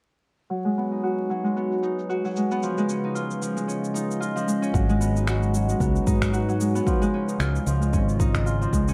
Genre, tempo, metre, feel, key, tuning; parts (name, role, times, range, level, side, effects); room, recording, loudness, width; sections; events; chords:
folktronica; 113 BPM; 4/4; swing 56% on 16ths; G# dorian; A4 = 440 Hz
warbly tape-like pad; sustained chords; 1.3-8.9 s; C#3 to D#5; -34 LUFS; equal; chorus, built-in reverb
Celtic harp; arpeggios; 0.5-8.9 s; E#3 to F#4; -27 LUFS; equal; vintage 12-bit sampler grit, low-pass filter, tape echo
electronic cabasa and finger snaps; drums; 0.5-8.9 s; -37 LUFS; equal; overdrive, low-pass filter on perc, low-pass filter on snare
fingered electric bass; bass; 4.7-8.9 s; G#1 to G#2; -26 LUFS; equal; tube saturation
electronic kick drum; drums; 4.7-8.8 s; -27 LUFS; equal; overdrive
light reverb; vinyl crackle; -24 LUFS; mono
0.5-4.8 A section; 4.8-8.9 B section
filter sweep on drum 0.5-4.8; filter sweep on harp 0.5-4.8; filter sweep on ambient pad 0.5-4.8
0.5 G#m7; 2.6 C#add9; 4.8 G#m7; 6.9 C#add9